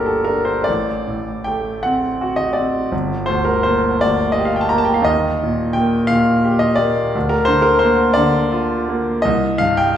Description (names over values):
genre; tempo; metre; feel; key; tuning
classical, romantic nocturne for solo piano; 50-60 BPM (dotted quarters); 12/8; rubato; G minor; A4 = 441 Hz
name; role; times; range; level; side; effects
bright grand piano; solo; 0.0-10.0 s; G1 to Bb5; -15 LUFS; equal; none
room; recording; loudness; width
wet recital hall reverb, RT60 1.5 s; recorded in a church or concert hall; -15 LUFS; side -10 dB against mid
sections
0.0-10.0 A section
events
none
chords
0.0 Gm; 0.7 D7/A; 2.9 Gm; 5.1 Eb; 7.2 Bb/D; 9.2 Cm